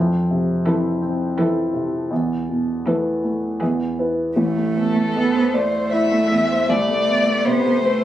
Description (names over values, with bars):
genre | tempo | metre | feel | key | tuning
classical, slow romantic movement for piano trio | 76-88 BPM | 3/4 | rubato | A minor | A4 = 439 Hz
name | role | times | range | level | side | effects
dark concert grand piano | accompaniment | 0.0-8.0 s | A1 to D5 | -20 LUFS | equal | none
dark violin | melody | 0.7-8.0 s | G#4 to E5 | -21 LUFS | left 2 dB | none
rich cello | second line | 0.7-8.0 s | E3 to B3 | -23 LUFS | right 4 dB | none
room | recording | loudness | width
light reverb | recorded on a phone in the room, club reverb | -17 LUFS | side -12 dB against mid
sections
0.0-4.4 A section; 4.4-8.0 B section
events
none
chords
0.0 Fmaj7; 2.1 Esus4; 3.6 E; 4.4 Am; 6.7 Am/C